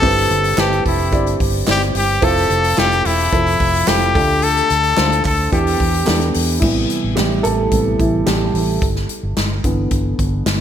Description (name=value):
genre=piano-driven pop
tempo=109 BPM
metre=4/4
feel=straight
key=A minor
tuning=A4 = 441 Hz
part: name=clear trumpet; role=melody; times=0.0-6.3 s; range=E4 to A4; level=-17 LUFS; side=left 3 dB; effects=ping-pong delay
part: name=dark upright piano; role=accompaniment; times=0.0-10.6 s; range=G2 to D5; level=-19 LUFS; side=right 2 dB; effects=none
part: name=vintage muted fingered electric bass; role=bass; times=0.0-10.6 s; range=E1 to E2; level=-20 LUFS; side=equal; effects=none
part: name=natural country drum kit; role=drums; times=0.0-10.6 s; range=crash cymbal, hi-hat, kick drum, snare drum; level=-20 LUFS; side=left 1 dB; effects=gated reverb
part: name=group handclap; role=percussion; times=0.6-10.6 s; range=none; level=-31 LUFS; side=right 5 dB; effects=none
room=moderate plate reverb, RT60 3.0 s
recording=bright 1980s-style digital production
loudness=-14 LUFS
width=side -9 dB against mid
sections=0.0-6.6 A section; 6.6-10.6 B section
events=upright piano solo 6.6-10.6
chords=0.0 Cmaj7; 2.2 Fmaj7; 4.2 Dm; 5.5 Em7; 6.6 Am7; 8.8 G6